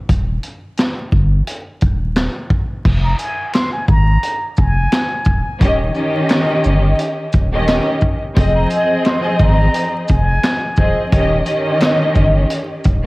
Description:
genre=hip hop, boom-bap hip-hop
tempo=87 BPM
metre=4/4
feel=swing 57% on 16ths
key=F minor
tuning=A4 = 441 Hz
part: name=warm sub bass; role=bass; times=0.1-13.1 s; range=Eb1 to Ab1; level=-15 LUFS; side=equal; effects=transformer saturation
part: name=vintage drum kit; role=drums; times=0.1-13.0 s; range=crash cymbal, handclaps, hi-hat, kick drum, shaker, snare drum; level=-17 LUFS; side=equal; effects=vintage 12-bit sampler grit
part: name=trumpet with plunger mute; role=melody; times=3.0-11.1 s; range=Ab5 to C6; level=-23 LUFS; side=equal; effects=high-pass filter, low-pass filter, cassette tape, tape echo
part: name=finger snap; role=percussion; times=3.5-12.0 s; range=none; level=-33 LUFS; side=left 2 dB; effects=none
part: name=warm studio string section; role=accompaniment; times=5.6-12.9 s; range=Eb3 to Eb5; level=-16 LUFS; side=equal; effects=cassette tape, high-pass filter, low-pass filter
room=little or no reverb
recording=home recording on cassette, vinyl crackle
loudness=-13 LUFS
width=side -22 dB against mid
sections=0.0-2.8 A section; 2.8-13.1 B section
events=break 0.0-2.8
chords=0.1 Eb; 2.8 Fm; 5.6 Eb7; 8.4 Fm7; 11.1 Eb7

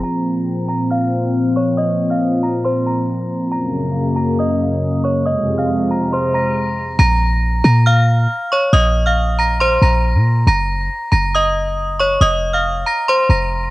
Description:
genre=hip hop, trap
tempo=138 BPM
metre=4/4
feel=half-time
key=Bb minor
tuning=A4 = 439 Hz
part: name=metallic FM bell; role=melody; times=0.0-13.7 s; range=C5 to Bb6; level=-18 LUFS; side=equal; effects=chorus, cassette tape
part: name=warm analog pad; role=sustained chords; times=0.0-7.0 s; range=F2 to C4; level=-18 LUFS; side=equal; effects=chorus, cassette tape
part: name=clean 808-style bass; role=bass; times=0.0, 7.0-13.7 s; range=F1 to Bb2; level=-15 LUFS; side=equal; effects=none
room=little or no reverb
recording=home recording on cassette, low-pass filter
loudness=-14 LUFS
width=side -18 dB against mid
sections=0.0-7.0 A section; 7.0-13.7 B section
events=filter sweep 0.0-7.0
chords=0.0 Bbsus2; 3.5 Gb; 5.3 Fm; 7.0 Bb5; 10.5 Gb; 12.2 F5

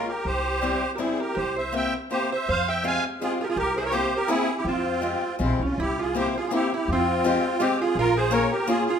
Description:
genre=musette waltz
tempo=164 BPM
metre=3/4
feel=swing 53% on 8ths, rubato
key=unclear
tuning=A4 = 439 Hz
part: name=musette accordion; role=melody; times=0.0-9.0 s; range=C4 to Ab5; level=-25 LUFS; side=right 1 dB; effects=none
part: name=picked swing-style acoustic guitar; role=accompaniment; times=0.0-8.9 s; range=G3 to Ab4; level=-28 LUFS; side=left 5 dB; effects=none
part: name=upright bass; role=bass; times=0.2-8.4 s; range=Bb1 to F2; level=-31 LUFS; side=equal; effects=none
part: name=archtop guitar, miked and amplified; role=second line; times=1.0-9.0 s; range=C4 to F5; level=-29 LUFS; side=right 4 dB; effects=none
room=moderate recital hall reverb, RT60 1.5 s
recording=minimal, uncompressed stereo recording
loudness=-22 LUFS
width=side -7 dB against mid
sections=0.0-5.8 A section; 5.8-9.0 A section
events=none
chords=0.3 C; 1.4 C7; 2.5 Fmadd9; 3.6 C7; 4.7 Fmadd9; 5.8 C7; 6.9 Fmadd9; 8.0 Bbm7

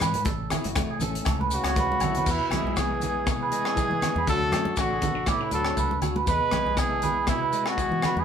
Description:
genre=highlife guitar band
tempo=120 BPM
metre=4/4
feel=swing 54% on 16ths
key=E mixolydian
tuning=A4 = 437 Hz
part: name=semi-hollow electric guitar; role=accompaniment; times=0.0-8.2 s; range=E2 to G#4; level=-33 LUFS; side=left 4 dB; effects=tremolo
part: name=clean electric guitar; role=arpeggios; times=0.0-8.2 s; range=F#4 to D5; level=-30 LUFS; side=right 6 dB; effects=none
part: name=fingered electric bass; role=bass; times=0.0-8.2 s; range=F#1 to E3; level=-32 LUFS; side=equal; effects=none
part: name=tight funk drum kit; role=drums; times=0.0-8.2 s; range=crash cymbal, hi-hat, kick drum, rim click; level=-30 LUFS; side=equal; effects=none
part: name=agogo bells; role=percussion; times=0.0-8.2 s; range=none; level=-36 LUFS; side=left 6 dB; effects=none
part: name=congas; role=percussion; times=0.0-8.2 s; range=none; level=-33 LUFS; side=right 3 dB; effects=none
part: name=maracas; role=percussion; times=0.0-8.2 s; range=none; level=-40 LUFS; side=left 4 dB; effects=none
part: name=mellow trumpet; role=melody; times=1.5-8.2 s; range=E4 to B4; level=-27 LUFS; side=right 1 dB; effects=none
part: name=growling tenor saxophone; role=second line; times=1.5-8.2 s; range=A2 to G#3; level=-35 LUFS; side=left 4 dB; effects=none
room=moderate studio reverb, RT60 0.7 s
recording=band playing live in one room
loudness=-23 LUFS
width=side -8 dB against mid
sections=0.0-2.3 A section; 2.3-8.2 B section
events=drum fill 1.6-2.3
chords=0.3 A; 2.3 E; 4.3 D; 6.3 E

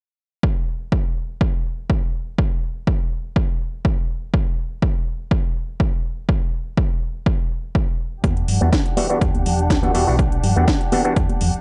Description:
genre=filtered disco house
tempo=123 BPM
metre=4/4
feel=swing 53% on 16ths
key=E minor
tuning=A4 = 440 Hz
part: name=electronic kick drum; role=drums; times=0.4-11.3 s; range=none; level=-22 LUFS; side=equal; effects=overdrive
part: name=warm chamber violin section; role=sustained chords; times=8.2-11.6 s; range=D4 to F#5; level=-28 LUFS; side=equal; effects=sidechain pumping, low-pass filter
part: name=fingered electric bass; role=bass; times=8.2-11.6 s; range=E1 to G2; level=-22 LUFS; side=equal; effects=transformer saturation, sidechain pumping, low-pass filter
part: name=house drum kit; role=drums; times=8.2-11.6 s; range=hi-hat, snare drum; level=-28 LUFS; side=equal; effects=overdrive, sidechain pumping on hats
part: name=tambourine and congas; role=percussion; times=8.2-11.6 s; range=none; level=-29 LUFS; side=equal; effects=sidechain pumping on perc, low-pass filter on perc
part: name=auto-wah clav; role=accompaniment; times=8.6-11.1 s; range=E3 to F#4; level=-24 LUFS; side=equal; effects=phaser, vintage 12-bit sampler grit, sidechain pumping, low-pass filter
room=digital ambience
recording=dry, gritty hardware recording, nothing above 10.9 kHz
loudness=-21 LUFS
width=mono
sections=0.4-11.6 A section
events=none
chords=0.4 N.C.; 8.2 Em9

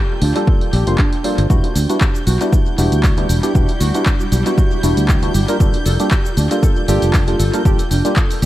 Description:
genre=deep house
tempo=117 BPM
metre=4/4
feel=swing 54% on 16ths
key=unclear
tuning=A4 = 440 Hz
part: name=warbly dusty pluck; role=arpeggios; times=0.0-8.5 s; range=D4 to A4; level=-25 LUFS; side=right 1 dB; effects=lush chorus, sidechain pumping, tape echo
part: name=clear studio violin section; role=texture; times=0.0-8.5 s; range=G6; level=-32 LUFS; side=equal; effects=sidechain pumping
part: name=granular cloud pad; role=texture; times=0.0-8.5 s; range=G3 to A5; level=-26 LUFS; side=equal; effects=built-in reverb, sidechain pumping
part: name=fingered electric bass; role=bass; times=0.2-8.5 s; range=E1 to D2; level=-16 LUFS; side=equal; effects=sidechain pumping
part: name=punchy analog drum machine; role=drums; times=0.2-8.5 s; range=handclaps, hi-hat, shaker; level=-25 LUFS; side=equal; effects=tape echo
part: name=percussive organ stab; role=stabs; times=0.4-8.1 s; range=G3 to C5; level=-20 LUFS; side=equal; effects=wide subtle chorus, sidechain pumping, tape echo
part: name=electronic kick drum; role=drums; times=0.5-8.3 s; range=none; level=-15 LUFS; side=equal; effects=none
room=light reverb, digital ambience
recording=echo-heavy mix, vinyl crackle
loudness=-13 LUFS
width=side -14 dB against mid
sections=0.0-8.5 A section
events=none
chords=0.0 Gm9; 1.5 Em9; 5.3 Gm9

